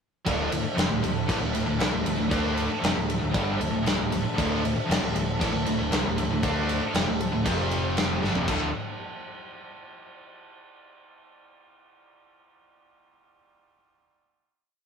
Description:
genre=hard rock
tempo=117 BPM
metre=4/4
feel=straight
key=unclear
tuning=A4 = 445 Hz
part: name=bright tonewheel organ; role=sustained chords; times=0.3-8.7 s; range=F3 to E5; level=-36 LUFS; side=left 2 dB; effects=overdrive, chorus vibrato, fast rotary speaker
part: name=high-gain distorted guitar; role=riff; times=0.3-8.7 s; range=D2 to D4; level=-31 LUFS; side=right 1 dB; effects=distortion
part: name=overdriven electric guitar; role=riff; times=0.3-8.7 s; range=D2 to D4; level=-30 LUFS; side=right 1 dB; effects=none
part: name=modern bright picked electric bass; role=bass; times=0.3-8.7 s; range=D1 to D2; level=-32 LUFS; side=equal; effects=none
part: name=big rock drum kit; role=drums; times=0.3-8.6 s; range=crash cymbal, kick drum, ride cymbal, snare drum, toms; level=-28 LUFS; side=equal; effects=none
room=moderate studio reverb, RT60 0.5 s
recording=rough rehearsal-room recording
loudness=-23 LUFS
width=side -6 dB against mid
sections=0.3-8.5 riff; 8.5-10.5 final chord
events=drum fill 8.2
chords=0.3 D5; 7.5 F5; 8.2 D5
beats=| 0.26 0.77 1.29 1.80 | 2.31 2.83 3.34 3.85 | 4.37 4.88 5.40 5.91 | 6.43 6.94 7.46 7.97 | 8.48

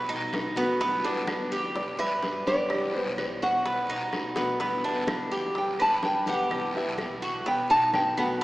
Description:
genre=latin, Cuban son and guajira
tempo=126 BPM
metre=4/4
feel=straight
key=unclear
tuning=A4 = 440 Hz
part: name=Cuban tres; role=arpeggios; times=0.0-8.4 s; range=B3 to B4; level=-30 LUFS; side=right 1 dB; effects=none
part: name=upright bass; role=bass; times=0.0-8.4 s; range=B1 to G3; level=-46 LUFS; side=equal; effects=none
part: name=bongos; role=percussion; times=0.1-8.4 s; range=none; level=-40 LUFS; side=left 1 dB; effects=none
part: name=congas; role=percussion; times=0.1-8.4 s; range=none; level=-40 LUFS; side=left 1 dB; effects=none
part: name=picked steel-string acoustic guitar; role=accompaniment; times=0.3-8.4 s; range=B2 to G4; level=-33 LUFS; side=left 1 dB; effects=none
part: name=claves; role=percussion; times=0.3-8.2 s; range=none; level=-42 LUFS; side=right 2 dB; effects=none
part: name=guiro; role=percussion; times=0.3-8.4 s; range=none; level=-39 LUFS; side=left 1 dB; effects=none
part: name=nylon-string guitar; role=melody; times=1.1-8.3 s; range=B4 to A5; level=-27 LUFS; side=equal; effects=none
room=wet cathedral reverb, RT60 5.3 s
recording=recorded in a church or concert hall, small speaker sound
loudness=-24 LUFS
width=side -17 dB against mid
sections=0.0-8.4 A section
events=drum fill 4.4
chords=0.0 B7; 0.8 Em7; 1.8 G; 2.7 Cmaj7; 3.7 B7; 4.6 Em7; 5.6 G; 6.5 Cmaj7; 7.5 B7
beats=0.33 | 0.81 1.28 1.75 2.23 | 2.70 3.18 3.65 4.13 | 4.60 5.08 5.56 6.03 | 6.51 6.99 7.46 7.94 | 8.42

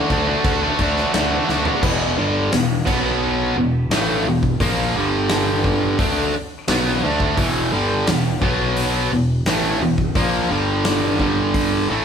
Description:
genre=classic rock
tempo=86 BPM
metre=4/4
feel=straight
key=E minor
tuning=A4 = 440 Hz
part: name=overdriven electric guitar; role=riff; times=0.0-12.0 s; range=E2 to F#4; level=-18 LUFS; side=equal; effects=none
part: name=picked electric bass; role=bass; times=0.1-12.0 s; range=E1 to D2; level=-25 LUFS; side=equal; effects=none
part: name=big rock drum kit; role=drums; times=0.1-11.7 s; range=crash cymbal, hi-hat, kick drum, snare drum, toms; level=-23 LUFS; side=equal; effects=none
room=moderate large studio reverb, RT60 1.0 s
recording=band playing live in one room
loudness=-16 LUFS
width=side -7 dB against mid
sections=0.0-1.8 A section; 1.8-12.0 B section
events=drum fill 1.5-1.8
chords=0.0 D; 1.8 Em; 2.9 B5; 3.6 E5; 5.0 G5; 6.0 Em; 8.4 B5; 9.1 E5; 10.5 G5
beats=0.45 1.14 | 1.83 2.53 3.22 3.91 | 4.61 5.30 5.99 6.69 | 7.38 8.07 8.77 9.46 | 10.16 10.85 11.55

